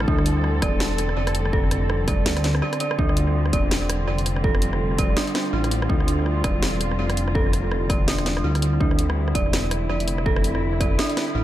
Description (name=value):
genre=half-time drum and bass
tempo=165 BPM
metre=4/4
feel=swing 59% on 16ths, half-time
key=D minor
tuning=A4 = 440 Hz
part: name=muted symphonic cello section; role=sustained chords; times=0.0-11.4 s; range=D3 to A4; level=-28 LUFS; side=left 2 dB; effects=vintage 12-bit sampler grit, sidechain pumping
part: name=dark detuned synth bell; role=arpeggios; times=0.0-11.4 s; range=D4 to D5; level=-27 LUFS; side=right 3 dB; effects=chorus, tremolo, vintage 12-bit sampler grit, dub echo
part: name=dark detuned saw bass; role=bass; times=0.0-11.4 s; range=E1 to D2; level=-24 LUFS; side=equal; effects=none
part: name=drum and bass drum kit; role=drums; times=0.0-11.3 s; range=hi-hat, rim click, snare drum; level=-28 LUFS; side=equal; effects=analog delay
part: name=electronic kick drum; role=drums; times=0.1-10.9 s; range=none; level=-23 LUFS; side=equal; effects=distortion
room=light reverb, digital ambience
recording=echo-heavy mix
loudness=-19 LUFS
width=side -13 dB against mid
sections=0.0-11.4 A section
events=break 2.6-3.0; drum fill 2.6-3.0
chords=0.0 Dm